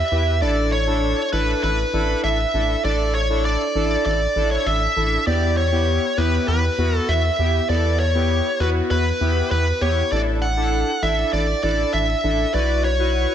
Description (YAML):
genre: synth-pop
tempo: 99 BPM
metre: 4/4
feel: straight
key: unclear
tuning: A4 = 439 Hz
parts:
  - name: bluesy overdriven lead guitar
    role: melody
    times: 0.0-13.3 s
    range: B4 to F#5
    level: -21 LUFS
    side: right 1 dB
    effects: distortion, digital delay
  - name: rubbery square bass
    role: bass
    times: 0.0-13.3 s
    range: A1 to E2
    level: -22 LUFS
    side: equal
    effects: none
  - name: analog synth brass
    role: accompaniment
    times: 0.1-13.3 s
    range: B3 to B4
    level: -24 LUFS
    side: left 2 dB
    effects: chorus
room: light reverb, digital ambience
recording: none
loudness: -18 LUFS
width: side -9 dB against mid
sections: 0.0-13.3 A section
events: none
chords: 0.4 Asus4; 5.3 Emadd9; 10.1 Asus4; 12.5 Bsus4